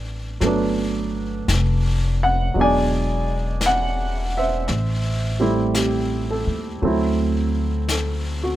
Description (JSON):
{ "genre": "jazz ballad", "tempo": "56 BPM", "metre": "4/4", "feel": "swing 67% on 8ths", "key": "G major", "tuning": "A4 = 437 Hz", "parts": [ { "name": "clear upright piano", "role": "accompaniment", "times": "0.0-8.6 s", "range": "B2 to G#5", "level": "-22 LUFS", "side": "right 2 dB", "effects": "none" }, { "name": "upright bass", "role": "bass", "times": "0.0-8.6 s", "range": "E1 to Eb2", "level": "-23 LUFS", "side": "left 1 dB", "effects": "none" }, { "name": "vintage brush drum kit", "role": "drums", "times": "0.4-8.6 s", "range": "brushed snare drum, hi-hat, snare drum", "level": "-30 LUFS", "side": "left 3 dB", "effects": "none" } ], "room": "light reverb", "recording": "close, detailed microphones", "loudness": "-19 LUFS", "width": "side -14 dB against mid", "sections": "0.0-8.6 A section", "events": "none", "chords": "0.4 Gmaj7; 2.5 E7; 4.7 Am7; 6.8 D7" }